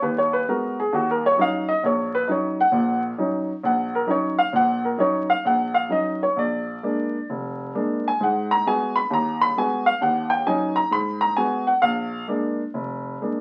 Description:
solo jazz; 132 BPM; 4/4; swing 67% on 8ths, rubato; Eb minor; A4 = 444 Hz
warm baby grand piano; solo; 0.0-13.4 s; F1 to Cb6; -22 LUFS; equal
moderate studio ambience, RT60 0.5 s; very old 78 rpm record, vinyl crackle; -23 LUFS; mono
0.0-13.4 A section
grand piano solo 0.0-13.4
0.0 Abm7; 0.9 Ebm7; 6.4 Bb7; 8.2 Abm7; 10.0 Ebm7; 10.9 Abm7; 11.8 Bb7

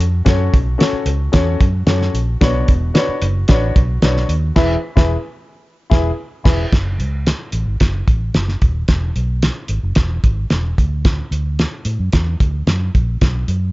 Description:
uptempo 1960s-style soul; 111 BPM; 4/4; straight; F# minor; A4 = 440 Hz
vintage muted fingered electric bass; bass; 0.0-13.7 s; D#1 to A2; -18 LUFS; equal
cloth-damped thuddy drum kit; drums; 0.0-13.6 s; crash cymbal, hi-hat, kick drum, snare drum; -15 LUFS; equal
warm grand piano; accompaniment; 0.2-6.6 s; B2 to E5; -20 LUFS; left 3 dB
little or no reverb; dark, warm production, nothing above 7.6 kHz; -14 LUFS; side -19 dB against mid
0.0-6.7 A section; 6.7-13.7 B section
band accent 4.6-6.7
0.0 F#m; 2.4 Bmadd9; 4.6 E; 6.7 F#m; 8.9 E; 10.8 D

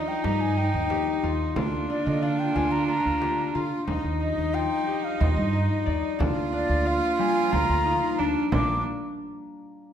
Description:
contemporary instrumental, chamber music in an uneven meter; 181 BPM (eighths); 7/8; straight; Bb major; A4 = 440 Hz
wooden flute; melody; 0.0-8.8 s; D5 to D6; -29 LUFS; equal
clear cello; second line; 0.0-8.8 s; D4 to F4; -29 LUFS; right 4 dB
warm studio string section; sustained chords; 0.0-8.8 s; Bb2 to F4; -35 LUFS; right 1 dB
concert harp; arpeggios; 0.0-8.8 s; G3 to D5; -29 LUFS; left 6 dB
upright bass; bass; 0.0-8.8 s; Bb1 to D3; -28 LUFS; right 1 dB
frame drum; percussion; 0.2-8.8 s; -32 LUFS; right 2 dB
wet recital hall reverb, RT60 1.4 s; -22 LUFS; side -9 dB against mid
0.0-3.9 A section; 3.9-8.5 B section; 8.5-9.9 C section
0.0 Ebadd9; 1.6 Bb/D; 3.9 Ebadd9; 6.2 Bb/D; 8.5 Bb

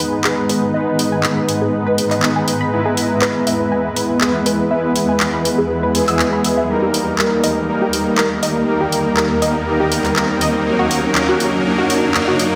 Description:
progressive house; 121 BPM; 4/4; straight; G# minor; A4 = 440 Hz
shimmering ambient pad; sustained chords; 0.0-12.6 s; D#2 to A#5; -24 LUFS; equal; chorus, built-in reverb
tight sequenced synth; arpeggios; 0.0-12.3 s; F#4 to E6; -25 LUFS; equal; chorus, delay
soft supersaw; stabs; 0.0-12.6 s; F#3 to B4; -20 LUFS; equal; low-pass filter, delay
house drum kit; drums; 0.0-12.5 s; handclaps, hi-hat; -23 LUFS; equal; studio reverb
riser; sound effects; 5.2-12.6 s; -29 LUFS; equal
wet digital room reverb, RT60 1.1 s; -17 LUFS; mono
0.0-12.6 A section
build-up 0.0-12.6; filter sweep on supersaw synth 0.0-12.6; filter sweep on ambient pad 0.0-12.6; riser 5.2-12.6
0.0 G#m; 2.7 E; 6.7 D#; 10.7 F#

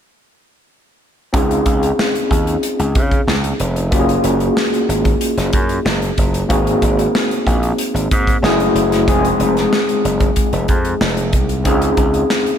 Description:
polished 1980s jazz-funk pop; 93 BPM; 4/4; straight; Db major; A4 = 440 Hz
overdriven tine electric piano; accompaniment; 1.3-12.6 s; Ab3 to Ab4; -17 LUFS; left 1 dB; medium tremolo, lush chorus, slapback echo
gritty slap bass; bass; 1.3-12.2 s; F1 to Db3; -19 LUFS; equal; overdrive
modern studio drum kit; drums; 1.3-12.6 s; hi-hat, kick drum, snare drum; -18 LUFS; equal
moderate concert hall reverb, RT60 2.5 s; big arena sound; -13 LUFS; side -8 dB against mid
1.3-12.6 A section
1.3 Dbmaj7; 3.9 Gbmaj9; 6.5 Ab7; 8.4 Gbm7; 9.1 Fm7; 11.7 Dbmaj7

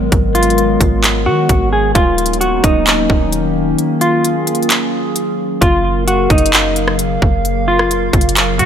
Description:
hip hop, atmospheric cloud-rap; 131 BPM; 4/4; half-time; F# major; A4 = 440 Hz
warbly tape-like pad; sustained chords; 0.0-8.7 s; C#3 to E#5; -17 LUFS; left 1 dB; chorus, built-in reverb, sidechain pumping
soft 808-style bass; bass; 0.0-8.7 s; D#1 to D#3; -19 LUFS; equal
trap drum kit; drums; 0.1-8.7 s; handclaps, hi-hat, kick drum, rim click; -14 LUFS; equal
semi-hollow electric guitar; melody; 0.3-8.7 s; D#4 to G#4; -17 LUFS; equal; low-pass filter, tape echo
light reverb; -11 LUFS; side -8 dB against mid
0.0-5.6 A section; 5.6-8.7 B section
break 3.8-5.6
0.0 G#m7; 2.0 D#m7; 5.6 F#maj7

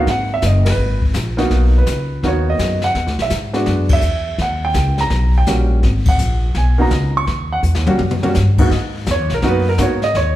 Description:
jazz piano trio; 167 BPM; 4/4; swing 64% on 8ths; G# minor; A4 = 440 Hz
warm baby grand piano; melody; 0.0-10.4 s; G#2 to C#6; -19 LUFS; right 2 dB
upright bass; bass; 0.1-10.4 s; F#1 to G#2; -16 LUFS; equal
jazz brush drum kit; drums; 0.1-10.4 s; brushed snare drum, crash cymbal, hi-hat, kick drum, ride cymbal, snare drum, toms; -21 LUFS; left 2 dB
moderate large studio reverb, RT60 1.3 s; heard from further back in the room; -14 LUFS; side -14 dB against mid
0.0-8.7 A section; 8.7-10.4 B section
band accent 0.6, 3.9, 6.0; drum fill 7.6-8.4; grand piano solo 8.7-10.4
0.1 G#m7; 3.0 E7; 4.4 D#7#9; 5.8 G#m7; 7.3 D#7#9; 8.7 G#m7

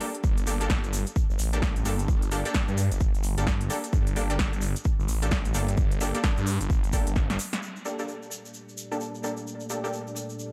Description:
bass house; 130 BPM; 4/4; swing 60% on 16ths; G minor; A4 = 439 Hz
orchestra-hit-like synth stab; stabs; 0.0-10.5 s; Bb3 to A4; -36 LUFS; equal; built-in reverb, sidechain pumping, digital delay
big-room dance drum kit; drums; 0.0-7.7 s; crash cymbal, hi-hat, snare drum; -35 LUFS; equal; overdrive, low-pass filter on hats, low-pass filter on snare, low-pass filter on cymbals, low-pass filter on room
phased detuned saw bass; bass; 0.2-7.4 s; G1 to G2; -30 LUFS; equal; phaser, tube saturation, sidechain pumping
electronic kick drum; drums; 0.2-7.3 s; -28 LUFS; equal
tube shaker; percussion; 0.2-10.5 s; -42 LUFS; equal
deep dark ambient pad; sustained chords; 8.3-10.5 s; Bb3 to D5; -40 LUFS; equal; chorus, built-in reverb, sidechain pumping
digital ambience; -27 LUFS; mono
0.0-7.6 A section; 7.6-10.5 B section
filter sweep on detuned saw bass 0.0-7.6; drum fill 7.2-7.6; band accent 7.5
0.0 Gmadd9

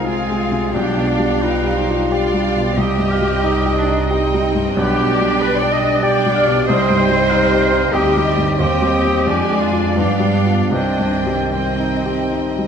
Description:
classical; 72-99 BPM; 3/4; rubato; C minor; A4 = 442 Hz
rich studio violin section; melody; 0.0-12.7 s; G5 to Ab5; -30 LUFS; left 1 dB
warm baby grand piano; melody; 0.0-12.7 s; B1 to Ab4; -19 LUFS; left 1 dB
clear clarinet; second line; 0.0-12.3 s; C4 to Eb5; -25 LUFS; left 2 dB
hollow concert flute; second line; 0.0-12.7 s; D5 to Ab5; -28 LUFS; left 2 dB
rich chamber violin section; second line; 0.0-12.7 s; D5 to F5; -28 LUFS; left 1 dB
warm oboe; second line; 0.0-12.7 s; G4 to G5; -26 LUFS; right 1 dB
mellow bassoon; accompaniment; 0.0-12.7 s; G3 to D4; -27 LUFS; right 4 dB
rich chamber viola section; accompaniment; 0.0-12.7 s; B3 to D4; -26 LUFS; right 3 dB
mellow French horn section; sustained chords; 0.0-12.7 s; Eb3 to F4; -26 LUFS; left 2 dB
rich studio double bass section; bass; 0.0-12.7 s; B1 to G2; -24 LUFS; right 4 dB
rich symphonic cello section; bass; 0.0-12.3 s; C4 to Eb5; -23 LUFS; right 2 dB
moderate concert hall reverb, RT60 2.4 s; -14 LUFS; side -7 dB against mid
0.0-12.7 A section
0.0 Fm/C; 0.7 G7/B; 2.8 Cm; 4.8 G/B; 6.7 Cm; 8.6 Cm/Eb; 9.3 Ddim/F; 10.0 G7; 10.7 Cm

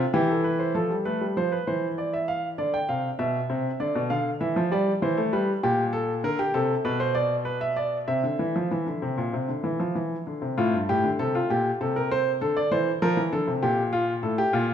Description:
classical, baroque-style two-part invention for grand piano; 98 BPM; 4/4; straight; F major; A4 = 440 Hz
warm grand piano; solo; 0.0-14.7 s; G2 to G5; -23 LUFS; equal
wet recital hall reverb, RT60 1.5 s; minimal, uncompressed stereo recording; -23 LUFS; side -9 dB against mid
0.8-10.6 A section; 10.6-14.7 B section
0.0 C; 0.8 F; 2.0 Dm; 3.2 Bmadd11; 4.4 Em; 5.6 Gm/Bb; 6.8 Bmadd11; 8.1 C; 10.6 F; 11.8 Am/C; 13.0 Bb5; 14.2 F/A

